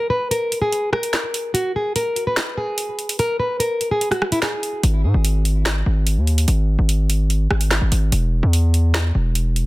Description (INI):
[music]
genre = hip hop, drill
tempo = 146 BPM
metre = 4/4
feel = half-time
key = G# minor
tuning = A4 = 441 Hz
[part]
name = nylon-string guitar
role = melody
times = 0.0-4.8 s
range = E4 to B4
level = -21 LUFS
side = equal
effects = low-pass filter, digital delay
[part]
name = drill drum kit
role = drums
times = 0.3-9.7 s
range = handclaps, hi-hat, rim click, snare drum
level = -23 LUFS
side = right 1 dB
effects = none
[part]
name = distorted 808-style bass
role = bass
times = 4.8-9.7 s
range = E1 to G#2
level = -16 LUFS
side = equal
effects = distortion
[sound]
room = little or no reverb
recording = dense, heavily limited modern master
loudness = -17 LUFS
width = side -20 dB against mid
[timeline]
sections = 0.0-9.7 A section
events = break 0.0-4.8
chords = 0.0 N.C.; 4.8 G#5; 8.1 N.C.